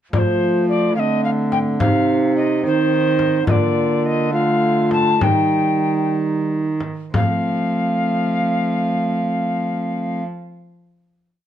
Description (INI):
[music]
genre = classical, renaissance-style consort dance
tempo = 59-73 BPM (dotted quarters)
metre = 6/8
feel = straight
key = F mixolydian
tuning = A4 = 440 Hz
[part]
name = mellow soprano recorder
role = melody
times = 0.1-10.2 s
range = C5 to A5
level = -21 LUFS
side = left 1 dB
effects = none
[part]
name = mellow hollow tenor recorder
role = second line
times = 0.1-10.2 s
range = C4 to F4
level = -22 LUFS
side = right 2 dB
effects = none
[part]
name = dark trombone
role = accompaniment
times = 0.1-10.2 s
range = G3 to C4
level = -23 LUFS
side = left 1 dB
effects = none
[part]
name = warm cello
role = bass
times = 0.1-10.2 s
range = C3 to F3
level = -24 LUFS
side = right 1 dB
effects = none
[part]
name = frame drum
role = percussion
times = 0.1-7.5 s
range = none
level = -21 LUFS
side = left 1 dB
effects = none
[sound]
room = light reverb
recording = dark, warm production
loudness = -16 LUFS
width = side -10 dB against mid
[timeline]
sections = 0.1-7.1 A section; 7.1-11.2 final chord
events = slowing down 2.6-7.1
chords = 0.1 F; 1.8 Cm; 3.5 Bb/D; 5.2 Eb; 7.1 F